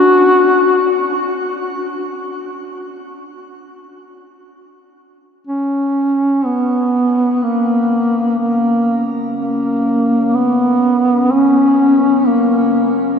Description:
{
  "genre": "dark ambient drone",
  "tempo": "free time",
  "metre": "none",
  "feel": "none",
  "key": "F# major",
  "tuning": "A4 = 440 Hz",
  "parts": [
    { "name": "dark duduk", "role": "melody", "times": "0.0-13.0 s", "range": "A#3 to F#4", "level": "-13 LUFS", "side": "left 1 dB", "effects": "shimmer reverb, tape echo" },
    { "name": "deep dark ambient pad", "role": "sustained chords", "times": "7.5-13.2 s", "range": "C#4 to F#5", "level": "-23 LUFS", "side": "right 1 dB", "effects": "chorus, built-in reverb" }
  ],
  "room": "wet huge ambient reverb, RT60 7.4 s",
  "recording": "dark, warm production",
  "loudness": "-12 LUFS",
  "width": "side -7 dB against mid",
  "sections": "0.0-5.5 A section; 5.5-13.2 B section",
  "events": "fade-in on ambient pad 5.5-13.2",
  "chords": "0.0 N.C.; 5.5 F#",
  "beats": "free time"
}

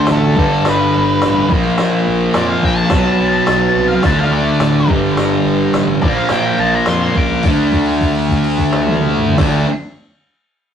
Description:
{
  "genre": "garage rock duo or trio",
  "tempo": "106 BPM",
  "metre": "4/4",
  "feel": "straight",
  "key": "unclear",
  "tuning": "A4 = 440 Hz",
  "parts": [
    { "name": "octave-fuzz lead guitar", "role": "melody", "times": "0.0-7.4 s", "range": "A4 to D6", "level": "-19 LUFS", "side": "left 2 dB", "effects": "distortion, tape echo" },
    { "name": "thick fuzz guitar", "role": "riff", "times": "0.0-9.7 s", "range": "G2 to D4", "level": "-14 LUFS", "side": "equal", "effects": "distortion" },
    { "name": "fuzz fingered electric bass", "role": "bass", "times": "0.1-9.6 s", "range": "G1 to Bb2", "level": "-23 LUFS", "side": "equal", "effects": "overdrive" },
    { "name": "organic electronic drum kit", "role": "drums", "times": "0.1-9.5 s", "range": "crash cymbal, hi-hat, kick drum, snare drum, toms", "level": "-19 LUFS", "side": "equal", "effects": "none" }
  ],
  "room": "wet small room reverb, RT60 0.6 s",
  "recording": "rough rehearsal-room recording, tube saturation",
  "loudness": "-12 LUFS",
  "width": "side -8 dB against mid",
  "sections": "0.0-7.4 A section; 7.4-9.7 B section",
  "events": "lead electric guitar solo 0.0-7.4; held note 7.4-9.4",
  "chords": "0.4 G; 1.5 Bb5; 2.9 B5; 4.0 D5; 4.9 G5; 6.0 Bb5; 7.4 D5",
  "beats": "0.08 | 0.65 1.21 1.78 2.35 | 2.91 3.48 4.05 4.61 | 5.18 5.75 6.31 6.88 | 7.45 8.02 8.58 9.15"
}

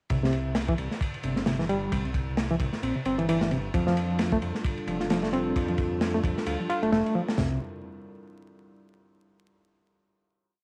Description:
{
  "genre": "breakbeat, breaks",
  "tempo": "132 BPM",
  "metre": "4/4",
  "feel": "swing 57% on 16ths",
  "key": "C major",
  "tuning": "A4 = 441 Hz",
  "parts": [
    { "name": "reed electric piano", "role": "riff", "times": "0.1-7.6 s", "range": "C3 to F4", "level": "-30 LUFS", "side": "equal", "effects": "fast tremolo, analog delay" },
    { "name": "fat analog bass", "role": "bass", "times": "0.1-7.6 s", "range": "F1 to F2", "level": "-35 LUFS", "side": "equal", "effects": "tube saturation" },
    { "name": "crunchy breakbeat drum kit", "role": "drums", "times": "0.1-7.5 s", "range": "kick drum, ride cymbal, snare drum, splash cymbal, toms", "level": "-32 LUFS", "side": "equal", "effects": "none" },
    { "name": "dark analog pad", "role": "sustained chords", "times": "3.7-7.6 s", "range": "G3 to Bb4", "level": "-37 LUFS", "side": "equal", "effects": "chorus, sidechain pumping" }
  ],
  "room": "light reverb",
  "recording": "home recording on cassette, vinyl crackle",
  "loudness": "-27 LUFS",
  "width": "mono",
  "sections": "0.1-7.4 drop; 7.4-9.2 final chord",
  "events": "drop 0.1-7.4",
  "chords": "0.1 C5; 3.7 F69; 7.4 C7",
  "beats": "| 0.10 0.56 1.01 1.47 | 1.92 2.38 2.83 3.28 | 3.74 4.19 4.65 5.10 | 5.56 6.01 6.47 6.92 | 7.38"
}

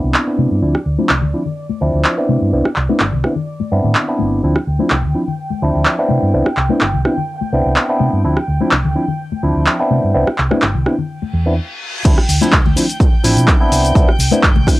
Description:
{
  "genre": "filtered disco house",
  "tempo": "126 BPM",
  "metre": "4/4",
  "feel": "straight",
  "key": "D dorian",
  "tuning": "A4 = 440 Hz",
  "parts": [
    { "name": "barky tine electric piano", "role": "accompaniment", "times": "0.0-14.8 s", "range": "F3 to E4", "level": "-17 LUFS", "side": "equal", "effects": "overdrive, phaser, sidechain pumping, low-pass filter, cassette tape" },
    { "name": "rich chamber string section", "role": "sustained chords", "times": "0.0-14.8 s", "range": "D5 to G6", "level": "-28 LUFS", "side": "right 2 dB", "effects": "sidechain pumping, low-pass filter, cassette tape" },
    { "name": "hollow-body short-scale fingered electric bass", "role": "bass", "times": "0.0-14.6 s", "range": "G1 to C3", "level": "-17 LUFS", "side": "equal", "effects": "sidechain pumping, low-pass filter" },
    { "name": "tube shaker and congas", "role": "percussion", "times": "0.0-14.8 s", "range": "none", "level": "-23 LUFS", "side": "left 8 dB", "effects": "sidechain pumping on perc, low-pass filter on perc" },
    { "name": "punchy analog drum machine", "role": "drums", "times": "0.1-14.8 s", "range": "crash cymbal, handclaps, hi-hat, rim click, shaker", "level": "-17 LUFS", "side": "equal", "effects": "sidechain pumping on hats, sidechain pumping on cymbals, sidechain pumping on perc" },
    { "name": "reverse cymbal", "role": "sound effects", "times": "11.3-12.1 s", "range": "none", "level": "-26 LUFS", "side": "left 3 dB", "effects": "none" },
    { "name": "electronic kick drum", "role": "drums", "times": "12.1-14.8 s", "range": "none", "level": "-12 LUFS", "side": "equal", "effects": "none" }
  ],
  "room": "light reverb",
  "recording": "home recording on cassette",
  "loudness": "-13 LUFS",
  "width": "side -17 dB against mid",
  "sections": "0.0-12.1 A section; 12.1-14.8 B section",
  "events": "filter sweep 0.0-12.1; reverse cymbal 11.3-12.1; stop 11.6-12.1; drop 12.1-14.8",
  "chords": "0.0 Cmaj9; 0.6 Dm9; 2.3 Cmaj9; 4.4 Dm9; 6.1 Cmaj9; 8.2 Dm9; 9.9 Cmaj9; 12.1 Dm9; 13.7 Cmaj9",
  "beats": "0.15 | 0.62 1.10 1.57 2.05 | 2.53 3.00 3.48 3.96 | 4.43 4.91 5.38 5.86 | 6.34 6.81 7.29 7.76 | 8.24 8.72 9.19 9.67 | 10.15 10.62 11.10 11.57 | 12.05 12.53 13.00 13.48 | 13.96 14.43"
}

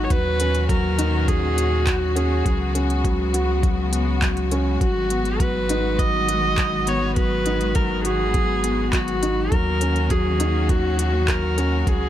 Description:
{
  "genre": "piano and strings electronica",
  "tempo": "102 BPM",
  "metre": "4/4",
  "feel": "straight",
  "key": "G# minor",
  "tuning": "A4 = 440 Hz",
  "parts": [
    { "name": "warm viola", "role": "melody", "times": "0.0-12.1 s", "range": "F#4 to D#5", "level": "-25 LUFS", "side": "right 2 dB", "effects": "none" },
    { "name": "rich studio string section", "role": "sustained chords", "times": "0.0-12.1 s", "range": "A#2 to F#4", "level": "-29 LUFS", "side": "left 2 dB", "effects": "sidechain pumping" },
    { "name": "felt-muted upright piano", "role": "riff", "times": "0.0-12.1 s", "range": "F#3 to F#4", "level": "-24 LUFS", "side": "left 1 dB", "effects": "digital delay" },
    { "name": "warm sub bass", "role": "bass", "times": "0.0-12.1 s", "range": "G#1 to D#2", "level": "-24 LUFS", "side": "equal", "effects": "sidechain pumping" },
    { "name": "electronic kick drum", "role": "drums", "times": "0.1-12.0 s", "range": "none", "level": "-22 LUFS", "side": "equal", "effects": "none" },
    { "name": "organic electronic drum kit", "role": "drums", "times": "0.1-12.0 s", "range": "handclaps, hi-hat", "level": "-29 LUFS", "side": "equal", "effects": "none" }
  ],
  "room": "little or no reverb",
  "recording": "none",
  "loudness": "-18 LUFS",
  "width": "side -12 dB against mid",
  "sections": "0.0-12.1 A section",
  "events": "none",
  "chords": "0.1 D#m7; 2.5 C#7sus4; 4.8 G#m7; 9.5 D#m7",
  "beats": "| 0.11 0.70 1.28 1.87 | 2.46 3.05 3.64 4.22 | 4.81 5.40 5.99 6.58 | 7.17 7.75 8.34 8.93 | 9.52 10.11 10.70 11.28 | 11.87"
}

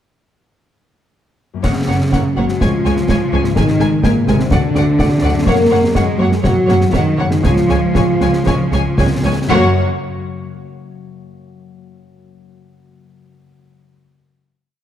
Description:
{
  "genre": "cinematic, heroic adventure film score",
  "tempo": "114-126 BPM",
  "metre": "4/4",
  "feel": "straight",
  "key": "unclear",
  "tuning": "A4 = 440 Hz",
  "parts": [
    { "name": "concert harp", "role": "arpeggios", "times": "1.5-9.8 s", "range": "Gb2 to Db5", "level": "-22 LUFS", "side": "left 7 dB", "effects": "none" },
    { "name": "warm symphonic violin section", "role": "melody", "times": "1.6-9.8 s", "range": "Gb5 to Ab5", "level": "-24 LUFS", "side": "left 4 dB", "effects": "none" },
    { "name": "warm symphonic violin section", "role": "second line", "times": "1.6-9.8 s", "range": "Bb4 to D5", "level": "-26 LUFS", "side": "left 2 dB", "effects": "none" },
    { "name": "rich studio viola section", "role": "accompaniment", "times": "1.6-9.8 s", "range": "Ab3 to Bb3", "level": "-24 LUFS", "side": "equal", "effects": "none" },
    { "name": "dark French horn section", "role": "sustained chords", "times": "1.6-9.7 s", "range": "Bb3 to Bb4", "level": "-19 LUFS", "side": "left 1 dB", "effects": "none" },
    { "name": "rich symphonic cello section", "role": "bass", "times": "1.6-9.8 s", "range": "Bb2 to Bb3", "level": "-19 LUFS", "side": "right 3 dB", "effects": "none" },
    { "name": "rich symphonic double bass section", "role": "bass", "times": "1.6-9.8 s", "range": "Gb1 to Gb2", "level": "-19 LUFS", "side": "right 3 dB", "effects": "none" },
    { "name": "concert snare drum, clash cymbals and concert bass drum", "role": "drums", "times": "1.6-9.5 s", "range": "none", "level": "-19 LUFS", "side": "equal", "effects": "none" }
  ],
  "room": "moderate scoring stage reverb, RT60 2.0 s",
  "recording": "dark, warm production",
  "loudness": "-12 LUFS",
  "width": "side -10 dB against mid",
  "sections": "1.6-9.5 theme; 9.5-11.6 final chord",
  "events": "slowing down 4.5-9.5",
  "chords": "1.6 Gb; 2.6 Db; 3.6 Absus2; 4.5 D; 5.5 Gb; 7.4 Db; 9.5 Gb",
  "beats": "| 1.64 2.13 2.61 3.09 | 3.57 4.05 4.52 5.00 | 5.48 5.96 6.44 6.94 | 7.44 7.95 8.46 8.98 | 9.50"
}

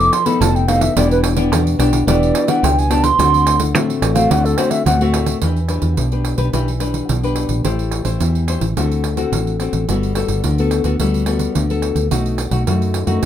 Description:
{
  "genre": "samba and choro",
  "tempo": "108 BPM",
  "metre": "4/4",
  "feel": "straight",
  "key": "E minor from 5.4 s",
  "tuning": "A4 = 440 Hz",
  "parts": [
    { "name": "reedy baroque flute", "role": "melody", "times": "0.0-5.0 s", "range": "A4 to D6", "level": "-16 LUFS", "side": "right 2 dB", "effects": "none" },
    { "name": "nylon-string guitar", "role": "accompaniment", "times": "0.0-13.3 s", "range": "F#2 to C5", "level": "-19 LUFS", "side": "left 4 dB", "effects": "none" },
    { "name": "fingered electric bass", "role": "bass", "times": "0.0-13.3 s", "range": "E1 to D3", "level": "-18 LUFS", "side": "equal", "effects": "none" },
    { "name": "pandeiro", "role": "percussion", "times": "0.0-13.3 s", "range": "none", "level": "-22 LUFS", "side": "right 4 dB", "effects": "none" }
  ],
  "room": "moderate small room reverb, RT60 0.5 s",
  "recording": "none",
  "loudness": "-14 LUFS",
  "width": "side -10 dB against mid",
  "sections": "0.0-5.4 A section; 5.4-13.3 B section",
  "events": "flute solo 0.0-5.4",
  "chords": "0.0 F7#11; 1.0 Em7; 3.2 D7; 5.4 Em7; 7.6 Am7; 8.8 D7; 9.9 Gmaj9; 12.1 B7",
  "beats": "0.41 | 0.97 1.52 2.08 2.63 | 3.19 3.75 4.30 4.86 | 5.42 5.97 6.53 7.09 | 7.65 8.21 8.77 9.32 | 9.88 10.44 11.00 11.55 | 12.11 12.67 13.23"
}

